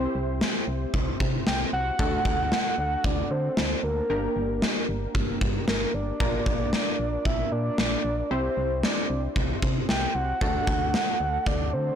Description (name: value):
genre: synth-pop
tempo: 114 BPM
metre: 4/4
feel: straight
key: C mixolydian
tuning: A4 = 441 Hz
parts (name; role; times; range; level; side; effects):
- soft octave-layered synth lead; melody; 0.0-12.0 s; Bb4 to G5; -29 LUFS; right 1 dB; chorus, ping-pong delay
- funky polysynth comp; accompaniment; 0.0-12.0 s; A3 to C5; -32 LUFS; equal; chorus
- solid FM bass; bass; 0.0-11.9 s; G1 to D3; -30 LUFS; equal; none
- gated 80s drum kit; drums; 0.4-11.6 s; kick drum, snare drum; -26 LUFS; equal; none
room: light reverb, small room ambience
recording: blown-out, overdriven recording, overdrive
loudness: -23 LUFS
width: side -8 dB against mid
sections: 0.0-12.0 A section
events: none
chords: 0.0 C; 2.0 D7; 4.1 Gm; 6.2 Bb; 8.3 Cadd9; 10.4 D7